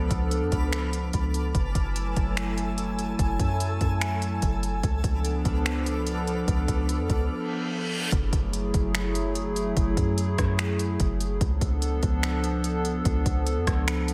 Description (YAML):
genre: hip hop, atmospheric cloud-rap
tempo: 146 BPM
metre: 4/4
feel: half-time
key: F# minor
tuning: A4 = 441 Hz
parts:
  - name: hollow soft pad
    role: sustained chords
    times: 0.0-14.1 s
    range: E#3 to G#5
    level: -32 LUFS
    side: equal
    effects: chorus, sidechain pumping
  - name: soft 808-style bass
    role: bass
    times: 0.0-14.1 s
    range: F#1 to F#2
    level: -30 LUFS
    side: equal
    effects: none
  - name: twinkling granular texture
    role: texture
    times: 0.0-8.1 s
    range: A4 to E#6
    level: -40 LUFS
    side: equal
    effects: built-in reverb
  - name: smooth R&B drum kit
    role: drums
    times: 0.1-14.1 s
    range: finger snaps, hi-hat, kick drum, rim click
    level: -30 LUFS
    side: equal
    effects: none
  - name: reverse cymbal and impact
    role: sound effects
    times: 7.4-9.8 s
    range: none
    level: -37 LUFS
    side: equal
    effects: none
room: light reverb, digital ambience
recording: none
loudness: -26 LUFS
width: mono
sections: 0.0-8.1 A section; 8.1-14.1 B section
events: break 7.3-8.1; reverse cymbal 7.5-8.1; impact 8.1-9.8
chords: 0.0 C#7b9b13; 1.5 F#m9; 4.8 C#7b9b13; 8.1 F#m9; 11.4 C#7b9b13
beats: 0.31 0.72 1.14 | 1.55 1.96 2.37 2.78 | 3.19 3.60 4.01 4.42 | 4.83 5.25 5.66 6.07 | 6.48 6.89 7.30 7.71 | 8.12 8.53 8.94 9.36 | 9.77 10.18 10.59 11.00 | 11.41 11.82 12.23 12.64 | 13.05 13.46 13.88